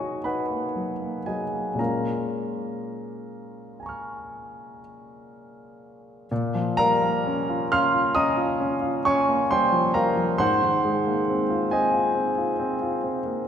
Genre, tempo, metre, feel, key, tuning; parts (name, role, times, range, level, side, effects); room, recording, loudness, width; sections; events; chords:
classical, impressionist solo piano; 38-46 BPM (dotted quarters); 9/8; rubato; Bb minor; A4 = 440 Hz
warm concert grand piano; solo; 0.0-13.5 s; Ab2 to F6; -22 LUFS; equal
wet concert hall reverb, RT60 2.5 s; heard from further back in the room; -21 LUFS; side -8 dB against mid
0.0-6.3 A section; 6.3-13.5 A section
0.0 Bmaj7; 1.8 Bbm7; 6.3 Bbm6; 10.4 Ab69